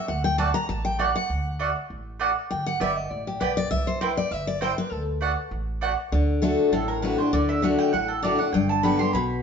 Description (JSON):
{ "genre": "bluegrass", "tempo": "199 BPM", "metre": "4/4", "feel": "straight", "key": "D mixolydian", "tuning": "A4 = 440 Hz", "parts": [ { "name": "picked steel-string acoustic guitar", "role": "accompaniment", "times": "0.0-9.4 s", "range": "G2 to Bb5", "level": "-24 LUFS", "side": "left 3 dB", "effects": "none" }, { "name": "upright bass", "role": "bass", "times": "0.1-9.4 s", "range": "G1 to D2", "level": "-30 LUFS", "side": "right 1 dB", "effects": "none" }, { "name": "mandolin", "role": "stabs", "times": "0.4-9.4 s", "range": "A3 to C6", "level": "-27 LUFS", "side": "right 5 dB", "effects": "none" } ], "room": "wet stone room reverb, RT60 1.1 s", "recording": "band playing live in one room, nothing above 7.6 kHz", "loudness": "-22 LUFS", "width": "side -6 dB against mid", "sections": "0.0-6.1 A section; 6.1-9.4 A section", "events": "steel-string acoustic guitar solo 0.0-6.1; mandolin solo 6.1-9.4", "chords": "0.0 D; 2.5 G; 3.7 C; 4.9 D; 8.5 G" }